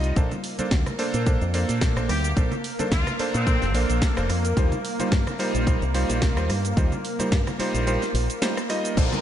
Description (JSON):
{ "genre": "nu-disco, nu disco", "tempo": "109 BPM", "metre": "4/4", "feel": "swing 55% on 16ths", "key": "unclear", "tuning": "A4 = 441 Hz", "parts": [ { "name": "clear electric grand piano", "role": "accompaniment", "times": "0.0-9.1 s", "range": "G3 to Eb5", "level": "-28 LUFS", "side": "right 1 dB", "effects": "sidechain pumping, diffuse ambient delay" }, { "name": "lush unison pad", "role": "sustained chords", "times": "0.0-9.2 s", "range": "Bb3 to C5", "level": "-30 LUFS", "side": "equal", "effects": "chorus, sidechain pumping" }, { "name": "fingered electric bass with an envelope filter", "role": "bass", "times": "0.0-9.1 s", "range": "F1 to Bb2", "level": "-25 LUFS", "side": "equal", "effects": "none" }, { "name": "house drum kit", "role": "drums", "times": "0.0-9.2 s", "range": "crash cymbal, hi-hat, rim click, shaker, snare drum", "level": "-31 LUFS", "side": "equal", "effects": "none" }, { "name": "cabasa and congas", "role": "percussion", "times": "0.0-9.2 s", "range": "none", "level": "-35 LUFS", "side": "right 2 dB", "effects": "none" }, { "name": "electronic kick drum", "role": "drums", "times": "0.2-9.1 s", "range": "none", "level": "-22 LUFS", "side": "equal", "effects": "none" }, { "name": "muted trumpet section", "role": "melody", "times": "2.1-3.7 s", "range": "C4 to G4", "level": "-31 LUFS", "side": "left 2 dB", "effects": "diffuse ambient delay" }, { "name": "downlifter", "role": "sound effects", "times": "9.0-9.2 s", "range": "none", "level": "-28 LUFS", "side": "left 1 dB", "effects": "none" } ], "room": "light reverb, digital ambience", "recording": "nothing above 10.8 kHz", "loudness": "-21 LUFS", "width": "side -10 dB against mid", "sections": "0.0-9.0 A section", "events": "kick drops out 7.9-9.0", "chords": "0.2 Bbmaj9; 4.6 Eb69", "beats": "| 0.17 0.72 1.27 1.82 | 2.37 2.92 3.47 4.02 | 4.57 5.12 5.67 6.22 | 6.77 7.32 7.87 8.42 | 8.97" }